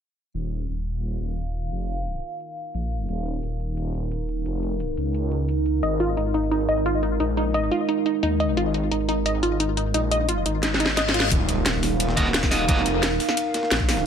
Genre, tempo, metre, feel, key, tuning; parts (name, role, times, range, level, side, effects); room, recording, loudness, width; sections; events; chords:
dark technical drum and bass; 175 BPM; 4/4; straight; A4 = 440 Hz
dark analog pad; sustained chords; 1.4-14.1 s; Ab3 to F5; -28 LUFS; right 2 dB; chorus, phaser, sidechain pumping
wide detuned saw bass; bass; 0.3-14.0 s; Eb1 to Eb2; -26 LUFS; equal; chorus, tube saturation
drum and bass drum kit; drums; 0.3-14.0 s; hi-hat, snare drum; -25 LUFS; equal
wide unison pluck; arpeggios; 5.8-11.3 s; Eb4 to Eb5; -25 LUFS; left 1 dB; sidechain pumping, ping-pong delay
reverse cymbal and impact; sound effects; 10.8-12.7 s; -30 LUFS; left 2 dB
breakbeat sampler-style drum kit; drums; 11.3-14.1 s; hi-hat, ride cymbal, snare drum; -33 LUFS; right 1 dB; high-pass filter on cymbals, high-pass filter on snare, high-pass filter on hats
electronic kick drum; drums; 11.3-13.9 s; -23 LUFS; equal
high-gain distorted guitar; stabs; 12.2-12.8 s; Bb3 to Eb5; -26 LUFS; right 2 dB; distortion, ping-pong delay
light reverb; low-pass filter; -21 LUFS; side -8 dB against mid
0.3-11.3 A section; 11.3-14.1 B section
filter sweep 0.3-11.3; drum fill 10.6-11.3; reverse cymbal 10.8-11.3; drop 11.3-14.1; impact 11.3-12.7
0.3 Eb5; 5.8 Ab5; 11.3 Eb5